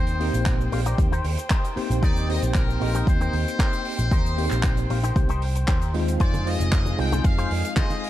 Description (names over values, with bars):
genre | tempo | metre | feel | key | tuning
nu-disco, nu disco | 115 BPM | 4/4 | straight | unclear | A4 = 440 Hz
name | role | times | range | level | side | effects
muted trumpet section | melody | 0.0-8.1 s | Bb4 to G5 | -33 LUFS | left 2 dB | tape echo
mellow tine electric piano | accompaniment | 0.0-8.1 s | Ab3 to F5 | -30 LUFS | equal | medium stereo tremolo, sidechain pumping
muted studio string section | sustained chords | 0.0-8.1 s | Ab4 to G5 | -36 LUFS | left 1 dB | sidechain pumping
electric guitar with an envelope filter | riff | 0.0-8.0 s | Eb4 to Eb5 | -34 LUFS | left 3 dB | analog chorus
picked electric bass with an envelope filter | bass | 0.0-7.6 s | F1 to F2 | -24 LUFS | equal | tube saturation
damped 70s drum kit | drums | 0.1-8.1 s | cabasa, handclaps, hi-hat, ride cymbal | -33 LUFS | right 2 dB | small room ambience
electronic kick drum | drums | 0.5-7.9 s | none | -22 LUFS | equal | overdrive, small room ambience
congas | percussion | 6.3-8.0 s | none | -32 LUFS | right 3 dB | none
room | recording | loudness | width
small room ambience | dark, warm production | -20 LUFS | side -14 dB against mid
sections
0.0-8.1 A section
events
none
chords
0.0 Eb6; 6.2 Fm7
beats
0.46 0.99 1.51 | 2.03 2.55 3.07 3.60 | 4.12 4.64 5.16 5.68 | 6.20 6.72 7.25 7.77